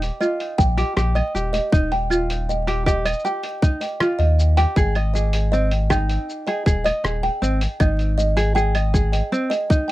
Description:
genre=folktronica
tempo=79 BPM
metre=4/4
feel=straight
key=Eb major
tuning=A4 = 439 Hz
part: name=warm sub bass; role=bass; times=0.0-9.2 s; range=Eb1 to Eb2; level=-20 LUFS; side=equal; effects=tube saturation
part: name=lo-fi sampler-style drum kit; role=drums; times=0.0-9.9 s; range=claves, hi-hat, rim click, shaker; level=-28 LUFS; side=right 1 dB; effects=none
part: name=kalimba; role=second line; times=0.2-9.9 s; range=Eb5 to G5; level=-25 LUFS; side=right 1 dB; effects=tape echo
part: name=tenor ukulele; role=arpeggios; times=0.2-9.9 s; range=C4 to Eb5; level=-25 LUFS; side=equal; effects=tape echo
part: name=electronic kick drum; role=drums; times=0.6-9.9 s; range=none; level=-18 LUFS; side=equal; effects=overdrive
room=little or no reverb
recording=dry, close 1970s-style studio recording, vinyl crackle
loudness=-18 LUFS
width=side -16 dB against mid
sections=0.0-9.9 A section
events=none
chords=0.0 Ebadd9; 4.8 Ab5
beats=0.21 0.96 | 1.73 2.48 3.24 4.00 | 4.76 5.52 6.28 7.04 | 7.80 8.56 9.32

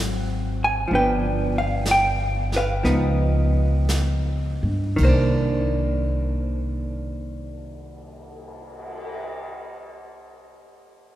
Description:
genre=jazz ballad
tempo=53-67 BPM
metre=4/4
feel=swing 67% on 8ths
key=C minor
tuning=A4 = 440 Hz
part: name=vintage hollow-body jazz guitar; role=accompaniment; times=0.0-9.6 s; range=Eb3 to Ab5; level=-23 LUFS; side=equal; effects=none
part: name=upright bass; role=bass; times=0.0-9.5 s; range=G1 to G2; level=-23 LUFS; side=equal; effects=none
part: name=jazz brush drum kit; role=drums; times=0.9-9.3 s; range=brushed snare drum, cymbal swell, hi-hat, kick drum, ride cymbal, snare drum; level=-32 LUFS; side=right 1 dB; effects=none
room=moderate cathedral reverb, RT60 4.8 s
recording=recorded in a church or concert hall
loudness=-20 LUFS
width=side -13 dB against mid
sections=0.0-5.0 A section; 5.0-9.5 B section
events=slowing down 0.0-5.0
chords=0.0 Ab7; 0.9 G7; 2.8 Db9; 5.0 Cm9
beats=| 0.91 1.85 2.84 3.88 | 4.98 6.11 7.24 8.37

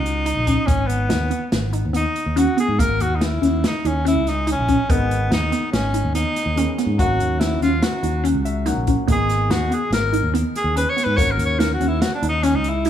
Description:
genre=progressive instrumental, band music in an uneven meter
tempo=143 BPM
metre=5/4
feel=straight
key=G# minor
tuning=A4 = 439 Hz
part: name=breathy tenor saxophone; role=melody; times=0.0-12.9 s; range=B3 to C#5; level=-22 LUFS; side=left 1 dB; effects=digital delay
part: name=resonant blip pluck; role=arpeggios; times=0.0-12.9 s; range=A#3 to A#4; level=-23 LUFS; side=right 1 dB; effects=phaser
part: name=fingered electric bass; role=bass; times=0.0-12.9 s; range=G#1 to G#2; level=-22 LUFS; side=equal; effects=none
part: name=open jazz drum kit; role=drums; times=0.1-12.9 s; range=hi-hat, kick drum, snare drum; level=-23 LUFS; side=equal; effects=none
part: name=warm grand piano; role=accompaniment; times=4.9-12.9 s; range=F#3 to F#5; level=-30 LUFS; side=left 5 dB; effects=none
room=light reverb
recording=small room reverb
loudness=-17 LUFS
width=side -10 dB against mid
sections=0.0-12.9 A section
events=tenor saxophone solo 0.0-12.9; grand piano fill 8.2-9.1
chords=0.0 F# (rootless); 0.7 G#madd9; 2.8 F#13 (rootless); 4.9 G#madd9; 7.0 F#/G#; 9.1 G#madd9; 11.2 F#/G#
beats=0.26 | 0.68 1.10 1.53 1.95 2.37 | 2.79 3.21 3.63 4.05 4.47 | 4.89 5.31 5.73 6.15 6.57 | 6.99 7.41 7.83 8.25 8.67 | 9.09 9.50 9.92 10.34 10.76 | 11.18 11.59 12.01 12.43 12.85

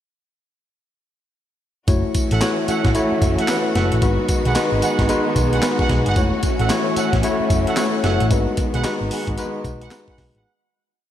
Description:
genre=R&B, new jack swing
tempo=112 BPM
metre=4/4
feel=swing 62% on 16ths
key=F# dorian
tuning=A4 = 436 Hz
part: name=tine electric piano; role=accompaniment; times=1.9-10.5 s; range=G#3 to C#5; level=-21 LUFS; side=left 3 dB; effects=none
part: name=warm studio string section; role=sustained chords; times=1.9-10.4 s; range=D#3 to F#4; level=-26 LUFS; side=right 2 dB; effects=none
part: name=hollow-body short-scale picked electric bass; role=bass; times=1.9-10.4 s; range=F#1 to B1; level=-21 LUFS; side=equal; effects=none
part: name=breakbeat sampler-style drum kit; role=drums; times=1.9-10.4 s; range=handclaps, hi-hat, kick drum, snare drum, tambourine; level=-23 LUFS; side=equal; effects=none
part: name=clear horn section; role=stabs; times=2.3-10.5 s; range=G#4 to F#5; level=-26 LUFS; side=right 4 dB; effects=analog delay
room=moderate lush hall reverb, RT60 2.1 s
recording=dreamy mix soaked in reverb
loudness=-17 LUFS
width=side -11 dB against mid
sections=1.9-10.4 chorus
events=fade-out 8.3-10.4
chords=1.9 F#m7; 4.0 G#m7; 6.2 F#m7; 8.3 G#m7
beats=| 1.88 2.41 2.95 3.48 | 4.02 4.56 5.09 5.63 | 6.16 6.70 7.24 7.77 | 8.31 8.84 9.38 9.91

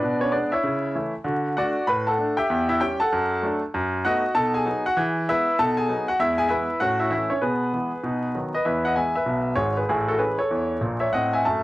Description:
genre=jazz, stride piano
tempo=195 BPM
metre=4/4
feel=swing 64% on 8ths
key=E major from 3.7 s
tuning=A4 = 441 Hz
part: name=clear concert grand piano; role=solo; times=0.0-11.6 s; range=G#1 to B5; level=-21 LUFS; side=equal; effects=none
room=moderate studio ambience, RT60 0.5 s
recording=home recording on cassette, vinyl crackle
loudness=-21 LUFS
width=side -17 dB against mid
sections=0.0-8.7 A section; 8.7-11.6 B section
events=none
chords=0.0 G#dim/B; 0.6 A/C#; 1.3 D; 2.5 C#dim/E; 3.1 D/F#; 3.7 B7/F#; 4.3 B7; 5.0 E; 5.6 B7; 6.2 E; 6.8 A; 7.4 E/B; 8.0 B; 8.7 E; 9.9 Amaj7; 11.1 Am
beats=| 0.03 0.34 0.65 0.95 | 1.26 1.57 1.88 2.19 | 2.50 2.81 3.11 3.42 | 3.73 4.04 4.35 4.65 | 4.96 5.27 5.58 5.88 | 6.19 6.50 6.81 7.12 | 7.42 7.73 8.04 8.35 | 8.66 8.96 9.27 9.58 | 9.89 10.20 10.51 10.82 | 11.13 11.44

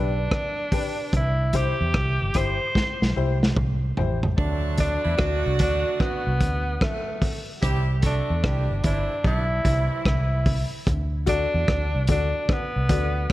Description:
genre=roots reggae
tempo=74 BPM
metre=4/4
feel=swing 65% on 16ths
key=unclear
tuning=A4 = 440 Hz
part: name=warm tenor saxophone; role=melody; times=0.0-13.3 s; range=A3 to C5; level=-28 LUFS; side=equal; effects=tape echo
part: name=warm upright piano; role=stabs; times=0.0-4.2, 11.3-13.1 s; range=D4 to D5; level=-31 LUFS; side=left 6 dB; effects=none
part: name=vintage muted fingered electric bass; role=bass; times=0.0-13.3 s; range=G1 to E2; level=-24 LUFS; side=equal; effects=none
part: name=vintage drum kit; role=drums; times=0.3-13.3 s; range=hi-hat, kick drum, rim click, snare drum, toms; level=-25 LUFS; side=equal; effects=none
part: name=warm horn section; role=second line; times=4.4-10.4 s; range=D3 to A4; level=-31 LUFS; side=right 4 dB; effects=tape echo
room=light reverb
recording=none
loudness=-21 LUFS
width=side -16 dB against mid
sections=0.0-4.4 A section; 4.4-13.3 B section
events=tenor saxophone solo 0.0-4.4; drum fill 2.8-4.4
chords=0.0 G; 1.1 C; 4.4 D; 7.6 C; 10.9 D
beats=0.32 | 1.13 1.95 2.76 3.57 | 4.38 5.19 6.00 6.82 | 7.63 8.44 9.25 10.06 | 10.87 11.68 12.49 13.30

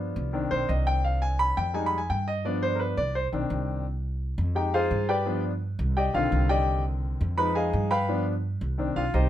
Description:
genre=latin, salsa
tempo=170 BPM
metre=4/4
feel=straight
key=C harmonic minor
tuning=A4 = 440 Hz
part: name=clear concert grand piano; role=accompaniment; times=0.0-9.3 s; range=D3 to B5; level=-26 LUFS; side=left 1 dB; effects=none
part: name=upright bass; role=bass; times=0.0-9.3 s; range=B1 to G2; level=-27 LUFS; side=right 1 dB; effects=none
room=light reverb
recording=minimal, uncompressed stereo recording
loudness=-24 LUFS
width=side -12 dB against mid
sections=0.0-9.3 A section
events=grand piano solo 0.0-9.3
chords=0.3 Cmadd9; 1.7 Fm7; 2.5 G7; 3.2 Cmadd9; 4.6 Fm7; 5.3 G7; 6.0 Cmadd9; 7.4 Fm7; 8.1 G7; 8.8 Cmadd9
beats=0.34 0.69 | 1.04 1.40 1.75 2.10 | 2.45 2.80 3.16 3.51 | 3.86 4.21 4.56 4.92 | 5.27 5.62 5.97 6.32 | 6.67 7.03 7.38 7.73 | 8.08 8.44 8.79 9.14

